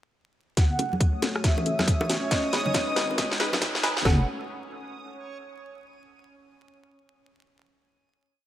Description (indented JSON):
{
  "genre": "deep dubstep",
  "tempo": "138 BPM",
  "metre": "4/4",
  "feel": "swing 61% on 16ths, half-time",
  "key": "F# dorian",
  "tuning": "A4 = 439 Hz",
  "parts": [
    { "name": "breathy flute-like synth lead", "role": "melody", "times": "0.6-4.3 s", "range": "D#5 to F#5", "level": "-33 LUFS", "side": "equal", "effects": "ensemble chorus, dub echo" },
    { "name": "dark analog pad", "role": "sustained chords", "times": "0.6-4.3 s", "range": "G#3 to C#5", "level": "-37 LUFS", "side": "left 1 dB", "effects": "chorus" },
    { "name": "deep soft wobble bass", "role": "bass", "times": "0.6-4.3 s", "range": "F#1 to A1", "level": "-30 LUFS", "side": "equal", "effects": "chorus, high-pass filter" },
    { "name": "garage drum kit", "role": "drums", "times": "0.6-4.2 s", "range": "kick drum, snare drum", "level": "-23 LUFS", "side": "equal", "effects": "none" },
    { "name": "garage drum kit", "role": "drums", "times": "0.6-4.0 s", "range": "hi-hat, rim click, snare drum", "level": "-28 LUFS", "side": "equal", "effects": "high-pass filter on snare, high-pass filter on hats" },
    { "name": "backwards swelling texture", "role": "texture", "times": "1.2-4.1 s", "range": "C#4 to D#6", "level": "-34 LUFS", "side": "right 1 dB", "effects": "built-in reverb" },
    { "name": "filtered dub chord stab", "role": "stabs", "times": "0.8-4.2 s", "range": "C#4 to B4", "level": "-33 LUFS", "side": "equal", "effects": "phaser, analog chorus, dub echo" },
    { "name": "bongos and congas", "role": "percussion", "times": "0.8-3.9 s", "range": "none", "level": "-32 LUFS", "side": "right 1 dB", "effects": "none" }
  ],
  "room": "moderate plate reverb, RT60 2.1 s",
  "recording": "bright 1980s-style digital production, vinyl crackle, high-pass filter",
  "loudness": "-22 LUFS",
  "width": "side -13 dB against mid",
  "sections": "0.6-4.1 build; 4.1-5.8 final chord",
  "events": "build-up 0.6-4.1; drum fill 0.6-4.1; filter sweep on synth stab 0.6-4.1; filter sweep 0.6-4.1",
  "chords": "0.6 F#m; 2.3 G#m; 4.1 F#m"
}